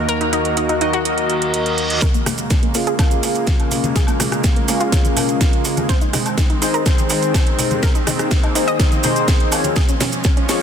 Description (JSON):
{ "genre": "progressive house", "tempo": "124 BPM", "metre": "4/4", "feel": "straight", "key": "Bb minor", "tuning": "A4 = 439 Hz", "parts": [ { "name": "supersaw pad", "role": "sustained chords", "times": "0.0-10.6 s", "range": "Eb2 to Bb4", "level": "-23 LUFS", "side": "right 1 dB", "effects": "sidechain pumping" }, { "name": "chorused polysynth", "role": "stabs", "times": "0.0-10.6 s", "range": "Db4 to F5", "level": "-22 LUFS", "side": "left 2 dB", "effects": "sidechain pumping, dub echo" }, { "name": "analog pluck", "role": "arpeggios", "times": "0.1-10.6 s", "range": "Bb3 to Eb5", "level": "-25 LUFS", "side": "equal", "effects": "chorus, sidechain pumping, dub echo" }, { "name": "house drum kit", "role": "drums", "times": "0.1-10.6 s", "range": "hi-hat, rim click, snare drum", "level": "-23 LUFS", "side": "right 2 dB", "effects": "none" }, { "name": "reverse cymbal and riser", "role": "sound effects", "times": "1.2-2.0, 9.8-10.6 s", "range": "none", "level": "-24 LUFS", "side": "right 2 dB", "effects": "none" }, { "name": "electronic kick drum", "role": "drums", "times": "2.0-10.3 s", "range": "none", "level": "-16 LUFS", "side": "equal", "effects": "none" }, { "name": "maracas", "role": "percussion", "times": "2.0-10.6 s", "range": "none", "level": "-27 LUFS", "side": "right 5 dB", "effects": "none" }, { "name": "tight sequencer bass", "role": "bass", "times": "2.3-10.6 s", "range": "Ab1 to Db2", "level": "-32 LUFS", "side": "equal", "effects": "none" }, { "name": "congas and woodblock", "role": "percussion", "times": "2.3-10.3 s", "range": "none", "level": "-27 LUFS", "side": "left 2 dB", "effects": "sidechain pumping on perc" } ], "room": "light reverb", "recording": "dense, heavily limited modern master", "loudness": "-15 LUFS", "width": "side -8 dB against mid", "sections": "0.0-2.0 A section; 2.0-10.6 B section", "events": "reverse cymbal 1.2-2.0; build-up 2.0-10.6; drum fill 2.0-10.6; filter sweep on synth pluck 2.0-10.6; filter sweep on analog polysynth 2.0-10.6", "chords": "0.0 Ebm; 2.0 Bbm7; 5.9 Ab; 9.8 Db" }